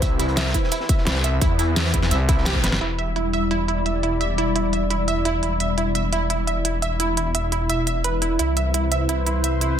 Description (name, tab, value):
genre	dark technical drum and bass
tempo	172 BPM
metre	4/4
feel	straight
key	E minor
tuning	A4 = 440 Hz
part	sweeping resonant pad	sustained chords	0.0-9.8 s	G3 to D5	-27 LUFS	left 1 dB	chorus, sidechain pumping
part	wide unison pluck	arpeggios	0.0-9.7 s	E4 to E5	-25 LUFS	right 3 dB	sidechain pumping, dub echo
part	wide detuned saw bass	bass	0.0-9.8 s	E1 to E2	-24 LUFS	equal	chorus, overdrive, sidechain pumping
part	crunchy breakbeat drum kit	drums	0.0-2.8 s	hi-hat, snare drum	-35 LUFS	equal	none
part	dubstep drum kit	drums	0.0-9.7 s	hi-hat, snare drum	-25 LUFS	right 1 dB	low-pass filter on hats, low-pass filter on snare
part	electronic kick drum	drums	0.0-2.6 s	none	-21 LUFS	equal	none
part	growling FM bass	bass	1.1-2.8 s	C2	-21 LUFS	equal	none
room	light reverb, digital ambience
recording	dense, heavily limited modern master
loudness	-19 LUFS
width	side -9 dB against mid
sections	0.0-2.8 A section; 2.8-9.8 B section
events	band accent 2.5; drum fill 2.6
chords	0.0 Cmaj7; 2.8 Em7; 8.4 Cmaj7